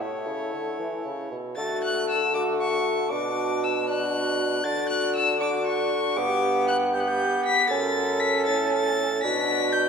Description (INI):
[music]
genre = classical, renaissance-style consort dance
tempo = 78 BPM (dotted quarters)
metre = 6/8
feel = straight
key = unclear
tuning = A4 = 439 Hz
[part]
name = rich violin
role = melody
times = 0.0-9.9 s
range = C#5 to B6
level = -27 LUFS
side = left 3 dB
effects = none
[part]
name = dark viola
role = second line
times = 0.0-9.9 s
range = E4 to A4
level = -30 LUFS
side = right 4 dB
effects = none
[part]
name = clear bassoon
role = accompaniment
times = 0.0-9.9 s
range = A3 to D4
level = -27 LUFS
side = left 1 dB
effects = none
[part]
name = mellow bassoon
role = bass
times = 0.0-9.9 s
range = F#2 to E3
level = -30 LUFS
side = right 1 dB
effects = none
[sound]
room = wet scoring stage reverb, RT60 2.1 s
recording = none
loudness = -22 LUFS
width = side -6 dB against mid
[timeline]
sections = 0.0-1.6 A section; 1.6-9.9 A section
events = none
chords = 0.0 A; 1.6 D; 3.1 Bm; 4.6 D; 6.2 G; 7.7 F#m; 9.2 Bm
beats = | 0.01 0.80 | 1.57 2.34 | 3.11 3.88 | 4.65 5.41 | 6.17 6.94 | 7.70 8.47 | 9.23